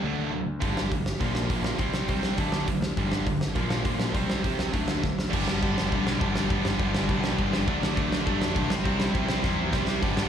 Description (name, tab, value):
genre	punk rock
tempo	204 BPM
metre	4/4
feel	straight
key	unclear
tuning	A4 = 440 Hz
part	sludgy distorted guitar	riff	0.0-10.3 s	G2 to D4	-31 LUFS	left 9 dB	overdrive, slapback echo
part	tight distorted guitar	riff	0.0-10.3 s	G2 to E4	-31 LUFS	right 11 dB	distortion
part	growling picked electric bass	bass	0.0-10.3 s	G1 to G2	-31 LUFS	equal	overdrive
part	big rock drum kit	drums	0.6-10.2 s	crash cymbal, hi-hat, kick drum, snare drum, splash cymbal	-28 LUFS	equal	none
part	heavy high-gain guitar	riff	5.3-10.3 s	G2 to D4	-33 LUFS	left 1 dB	distortion, slapback echo
room	light reverb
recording	live gig heard through the venue's PA, club reverb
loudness	-24 LUFS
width	side -8 dB against mid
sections	0.0-5.3 A section; 5.3-10.3 B section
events	drum fill 5.0, 9.4-10.0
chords	0.0 D; 0.6 G5; 1.2 Bb; 1.8 C5; 2.4 D; 3.0 G5; 3.6 Bb; 4.1 C5; 4.7 D; 5.3 G; 7.7 D; 8.7 C